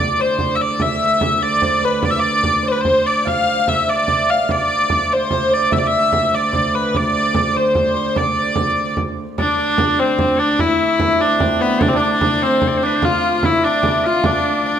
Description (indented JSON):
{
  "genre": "medieval dance",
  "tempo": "98 BPM (dotted quarters)",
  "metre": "6/8",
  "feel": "straight",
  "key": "D dorian",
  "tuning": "A4 = 440 Hz",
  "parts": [
    { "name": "clear hurdy-gurdy", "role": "melody", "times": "0.0-14.8 s", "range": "B3 to F5", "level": "-16 LUFS", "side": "left 2 dB", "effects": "none" },
    { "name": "hammered dulcimer", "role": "second line", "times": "0.0-14.8 s", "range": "A3 to F5", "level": "-22 LUFS", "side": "right 4 dB", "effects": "none" },
    { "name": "clear viola da gamba", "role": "drone", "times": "0.0-14.8 s", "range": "D2", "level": "-26 LUFS", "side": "equal", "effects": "none" },
    { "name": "frame drum", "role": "percussion", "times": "0.2-14.4 s", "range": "none", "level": "-23 LUFS", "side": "right 2 dB", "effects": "none" },
    { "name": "edgy shawm", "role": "second line", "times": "9.4-14.8 s", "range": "B4 to F5", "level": "-25 LUFS", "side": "left 6 dB", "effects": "none" }
  ],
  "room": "moderate recital hall reverb, RT60 1.6 s",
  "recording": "close, detailed microphones",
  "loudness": "-14 LUFS",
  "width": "side -9 dB against mid",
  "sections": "0.0-9.4 A section; 9.4-14.8 A section",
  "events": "none",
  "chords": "none"
}